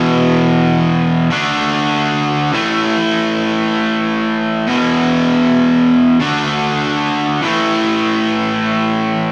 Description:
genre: rock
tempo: free time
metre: none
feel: none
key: unclear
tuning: A4 = 441 Hz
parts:
  - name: cranked stack guitar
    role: solo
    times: 0.0-9.3 s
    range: E2 to D4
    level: -15 LUFS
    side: equal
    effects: overdrive
room: moderate studio reverb, RT60 0.5 s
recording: rough rehearsal-room recording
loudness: -15 LUFS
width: mono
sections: 0.0-7.4 A section; 7.4-9.3 B section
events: none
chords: 0.0 E5; 1.3 D5; 2.5 A5; 4.7 E5; 6.2 D5; 7.4 A5

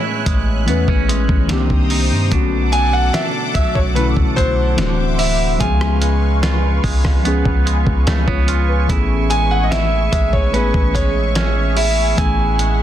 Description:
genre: contemporary R&B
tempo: 73 BPM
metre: 4/4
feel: straight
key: A major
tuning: A4 = 439 Hz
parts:
  - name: warm concert grand piano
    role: melody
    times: 0.0-12.8 s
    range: B4 to G#5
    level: -21 LUFS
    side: equal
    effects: tape echo
  - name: muted felt-like synth keys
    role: accompaniment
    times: 0.0-12.8 s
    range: B2 to E#5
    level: -22 LUFS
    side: left 4 dB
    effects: chorus
  - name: lush unison pad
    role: sustained chords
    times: 0.0-12.8 s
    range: G#4 to F#6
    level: -26 LUFS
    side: equal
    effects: chorus, phaser, sidechain pumping
  - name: clean electric guitar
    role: arpeggios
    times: 0.0-12.8 s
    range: A2 to E#4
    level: -25 LUFS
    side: right 10 dB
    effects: tape echo
  - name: downlifter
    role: sound effects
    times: 0.0-2.3 s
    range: none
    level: barely audible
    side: none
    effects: none
  - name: long sustained 808-style bass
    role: bass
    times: 0.3-12.8 s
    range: D1 to G2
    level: -18 LUFS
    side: equal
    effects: none
  - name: dusty soul sampler-style drum kit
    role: drums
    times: 0.3-12.8 s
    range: hi-hat, kick drum, rim click, snare drum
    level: -19 LUFS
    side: equal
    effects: none
room: digital ambience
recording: dense, heavily limited modern master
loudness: -14 LUFS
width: side -11 dB against mid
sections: 0.0-12.8 A section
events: none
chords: 0.0 Amaj7; 1.5 Cm7; 2.3 Bm7; 4.8 D9; 5.6 C#7; 8.9 Amaj7

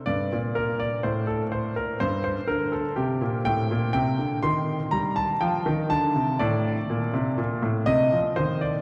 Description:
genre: classical-period piano sonatina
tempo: 123 BPM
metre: 4/4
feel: straight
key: G minor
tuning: A4 = 439 Hz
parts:
  - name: clear grand piano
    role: solo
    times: 0.1-8.8 s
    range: G2 to C6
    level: -25 LUFS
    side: equal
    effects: none
room: wet cathedral reverb, RT60 6.3 s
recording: in a vast, echoing space, vinyl crackle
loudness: -25 LUFS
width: mono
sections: 0.0-8.8 A section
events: none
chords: 0.1 Gm; 1.0 N.C.; 2.0 Gm; 3.9 Cm13; 5.9 D5; 6.9 Amadd11; 7.9 Cmadd9

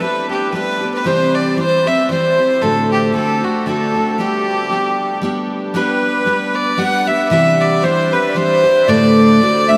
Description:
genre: celtic folk, Celtic waltz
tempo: 115 BPM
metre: 3/4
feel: swing 55% on 8ths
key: G major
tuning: A4 = 440 Hz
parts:
  - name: bright fiddle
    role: melody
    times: 0.0-9.8 s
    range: F#4 to F#5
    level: -19 LUFS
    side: equal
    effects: none
  - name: accordion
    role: second line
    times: 0.0-9.8 s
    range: G4 to F#5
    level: -23 LUFS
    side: equal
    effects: none
  - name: picked steel-string acoustic guitar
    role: accompaniment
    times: 0.0-9.8 s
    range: D2 to G4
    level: -19 LUFS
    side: equal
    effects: none
room: wet huge ambient reverb, RT60 7.4 s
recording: in a vast, echoing space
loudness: -15 LUFS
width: mono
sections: 0.0-5.8 A section; 5.8-9.8 B section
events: none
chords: 0.0 G; 1.1 C; 2.6 D; 4.2 G; 7.3 Cadd9; 8.9 D

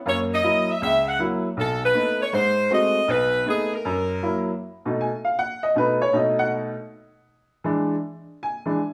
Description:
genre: jazz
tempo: 158 BPM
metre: 4/4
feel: swing 66% on 8ths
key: B mixolydian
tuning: A4 = 441 Hz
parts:
  - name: bright saxophone section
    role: melody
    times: 0.1-4.5 s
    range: G#4 to F#5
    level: -24 LUFS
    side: equal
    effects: none
  - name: bright upright piano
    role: accompaniment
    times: 0.1-8.9 s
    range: B1 to G#5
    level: -26 LUFS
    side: equal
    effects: none
room: moderate large studio reverb, RT60 1.1 s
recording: band playing live in one room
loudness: -23 LUFS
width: mono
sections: 0.0-4.6 A section; 4.6-8.9 B section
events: upright piano solo 4.6-8.9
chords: 0.1 F#7; 1.6 B7; 2.3 G#7b9; 3.1 B7; 3.9 F#7; 4.6 B7; 7.6 E7

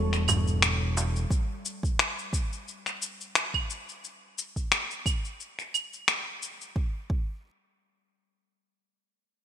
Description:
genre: organic downtempo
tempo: 88 BPM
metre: 4/4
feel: swing 55% on 16ths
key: A mixolydian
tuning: A4 = 440 Hz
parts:
  - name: warm analog pad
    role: sustained chords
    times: 0.0-1.3 s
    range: A4 to C#6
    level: -40 LUFS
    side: right 4 dB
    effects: chorus, sidechain pumping
  - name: Celtic harp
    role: arpeggios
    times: 0.0-2.1 s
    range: G3 to C#4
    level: -39 LUFS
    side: left 6 dB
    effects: low-pass filter, ping-pong delay
  - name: smooth synth bass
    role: bass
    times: 0.0-1.3 s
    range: E1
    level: -26 LUFS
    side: equal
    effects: sidechain pumping
  - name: electronic finger snaps, cabasa and claves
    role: drums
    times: 0.1-6.7 s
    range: none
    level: -27 LUFS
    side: left 2 dB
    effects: gated reverb
  - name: darbuka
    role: percussion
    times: 0.3-1.1 s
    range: none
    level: -34 LUFS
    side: right 3 dB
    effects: none
  - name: electronic kick drum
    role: drums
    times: 1.3-7.3 s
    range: none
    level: -29 LUFS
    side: right 1 dB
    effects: none
room: light reverb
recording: bright 1980s-style digital production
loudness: -27 LUFS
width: side -10 dB against mid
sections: 0.0-6.8 A section; 6.8-9.4 B section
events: none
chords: 0.0 A7; 6.8 N.C.

